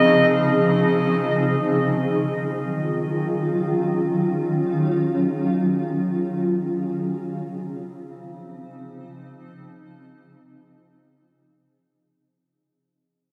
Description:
ambient; free time; Eb dorian; A4 = 438 Hz
granular cloud pad; sustained chords; 0.0-12.2 s; Db3 to Ab4; -23 LUFS; equal; built-in reverb
wet huge ambient reverb, RT60 8.2 s; -22 LUFS; mono
1.0-12.2 A section
fade-out 1.0-12.2
0.0 Dbmaj9; 1.0 Ebm11; 6.6 Dbmaj9
free time

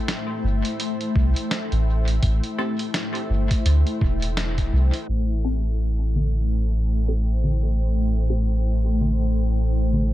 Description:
ambient dub; 84 BPM; 4/4; swing 59% on 16ths; A minor; A4 = 438 Hz
granular cloud pad; sustained chords; 0.0-10.1 s; A3 to G5; -28 LUFS; left 2 dB; built-in reverb
lo-fi sampler-style drum kit; drums; 0.1-10.1 s; congas, hi-hat, snare drum; -29 LUFS; left 1 dB; low-pass filter on hats, low-pass filter on snare, low-pass filter on perc, low-pass filter on room, dub echo
soft dub sub bass; bass; 0.4-10.1 s; E1 to D2; -20 LUFS; equal
electronic kick drum; drums; 1.2-4.7 s; -23 LUFS; equal
filtered dub chord stab; stabs; 2.6-8.5 s; C4 to A4; -33 LUFS; left 2 dB; phaser, lush chorus, dub echo
digital ambience; low-pass filter; -20 LUFS; side -15 dB against mid
0.0-5.1 A section; 5.1-10.1 B section
band accent 4.4-4.7; filter sweep 5.1-10.1
0.0 Am7
0.09 0.80 1.51 | 2.23 2.94 3.66 4.37 | 5.08 5.80 6.51 7.23 | 7.94 8.66 9.37 10.09

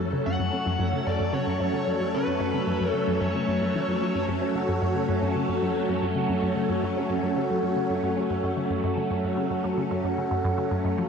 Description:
ambient, sequencer-driven space music; 112 BPM; 4/4; straight; F# minor; A4 = 441 Hz
phased string machine; sustained chords; 0.0-11.1 s; E#3 to A4; -27 LUFS; left 1 dB; ensemble chorus, phaser
resonant blip pluck; riff; 0.0-11.1 s; F#2 to F#3; -29 LUFS; equal; chorus, phaser, tape echo
bluesy overdriven lead guitar; melody; 0.3-4.2 s; B4 to F#5; -32 LUFS; left 1 dB; distortion, tape echo
vibraphone with soft mallets; arpeggios; 4.6-11.1 s; C#4 to F#5; -29 LUFS; right 1 dB; auto-pan, tape echo
wet huge ambient reverb, RT60 7.6 s; dark, warm production; -24 LUFS; side -6 dB against mid
0.0-11.1 A section
filter sweep on synth arpeggio sound 0.0-11.1
0.0 F#m
| 0.27 0.80 1.34 1.88 | 2.41 2.95 3.48 4.02 | 4.55 5.09 5.62 6.16 | 6.70 7.23 7.77 8.30 | 8.84 9.38 9.91 10.45 | 10.98

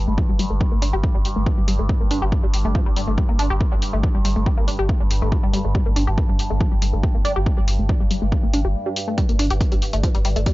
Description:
driving peak-time techno; 140 BPM; 4/4; straight; G minor; A4 = 439 Hz
warm sub bass; bass; 0.0-10.5 s; G1; -22 LUFS; equal; sidechain pumping, low-pass filter
overtone-sweeping drone; drone; 0.0-10.5 s; G2; -30 LUFS; right 1 dB; chorus, built-in reverb, sidechain pumping
tight sequenced synth; riff; 0.1-10.5 s; F3 to G4; -26 LUFS; left 1 dB; chorus, overdrive, sidechain pumping, tape echo
electronic kick drum; drums; 0.2-10.5 s; -20 LUFS; equal
electronic hi-hat; drums; 0.4-10.5 s; -29 LUFS; left 1 dB; sidechain pumping on hats
little or no reverb; dry, gritty hardware recording, nothing above 7.5 kHz; -18 LUFS; side -18 dB against mid
0.0-10.5 A section
break 8.8-9.2
0.0 G5
0.18 | 0.61 1.03 1.46 1.89 | 2.32 2.75 3.18 3.61 | 4.04 4.46 4.89 5.32 | 5.75 6.18 6.61 7.04 | 7.46 7.89 8.32 8.75 | 9.18 9.61 10.04 10.46

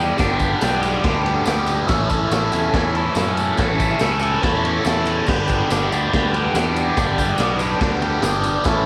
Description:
garage rock duo or trio; 142 BPM; 4/4; straight; A4 = 440 Hz
biting overdriven guitar; riff; 0.0-8.9 s; G2 to A4; -21 LUFS; equal; phaser, cassette tape
fuzz fingered electric bass; bass; 0.0-8.9 s; G1 to F#2; -27 LUFS; equal; overdrive
raw garage drum kit; drums; 0.2-8.8 s; crash cymbal, kick drum, ride cymbal, snare drum; -26 LUFS; equal; cassette tape
tambourine; percussion; 0.2-8.7 s; -40 LUFS; equal
light reverb, small room ambience; home recording on cassette; -19 LUFS; mono
0.0-8.9 A section
0.0 G; 1.9 A; 5.3 G
| 0.19 0.61 1.04 1.46 | 1.89 2.31 2.74 3.16 | 3.58 4.01 4.43 4.86 | 5.28 5.70 6.12 6.54 | 6.97 7.39 7.81 8.23 | 8.66

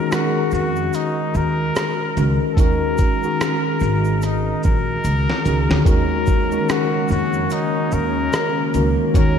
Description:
lo-fi hip hop; 73 BPM; 4/4; swing 58% on 16ths; Eb minor; A4 = 440 Hz
trumpet with straight mute; melody; 0.0-9.4 s; Eb4 to Bb4; -24 LUFS; left 2 dB; low-pass filter, diffuse ambient delay
mellow tine electric piano; accompaniment; 0.0-9.4 s; Eb3 to Db5; -21 LUFS; left 1 dB; slow stereo tremolo, cassette tape, low-pass filter
dusty soul sampler-style drum kit; drums; 0.1-9.4 s; hi-hat, kick drum, rim click, shaker, snare drum; -22 LUFS; equal
egg shaker; percussion; 0.1-9.4 s; -46 LUFS; right 10 dB
upright bass; bass; 0.5-9.4 s; Ab1 to F2; -22 LUFS; right 1 dB
lush unison pad; sustained chords; 5.9-9.4 s; Db3 to Eb4; -26 LUFS; right 1 dB; chorus, low-pass filter
wet lush hall reverb, RT60 2.9 s; dreamy mix soaked in reverb; -16 LUFS; side -7 dB against mid
0.0-5.9 A section; 5.9-9.4 A section
drum fill 5.0-5.9
0.0 Ebm7
0.11 0.93 1.75 | 2.57 3.40 4.22 5.04 | 5.86 6.68 7.50 8.33 | 9.15

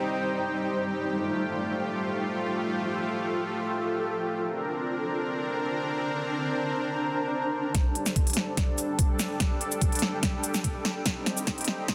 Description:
heavy wobble dubstep; 145 BPM; 4/4; half-time; G minor; A4 = 440 Hz
supersaw pad; sustained chords; 0.0-11.9 s; G3 to Bb4; -33 LUFS; equal; sidechain pumping, low-pass filter
granular cloud pad; texture; 0.0-11.9 s; G3 to Bb5; -34 LUFS; equal; built-in reverb, sidechain pumping
big-room dance drum kit; drums; 7.7-11.9 s; hi-hat, shaker, snare drum; -31 LUFS; equal; overdrive, small room ambience
electronic kick drum; drums; 7.7-11.9 s; -29 LUFS; equal; small room ambience
moderate lush hall reverb, RT60 1.9 s, digital ambience; dense, heavily limited modern master, high-pass filter; -29 LUFS; mono
0.0-7.7 A section; 7.7-11.9 B section
build-up 7.7-11.9; drum fill 7.7-11.9; filter sweep on supersaw synth 7.7-11.9; filter sweep 7.7-11.9
0.0 Cm/G; 1.1 Fadd9; 4.4 Bbadd9; 7.7 Gsus2; 11.1 Cm/G
0.30 0.71 | 1.13 1.54 1.95 2.37 | 2.78 3.19 3.61 4.02 | 4.44 4.85 5.26 5.68 | 6.09 6.50 6.92 7.33 | 7.75 8.16 8.57 8.99 | 9.40 9.81 10.23 10.64 | 11.06 11.47 11.88

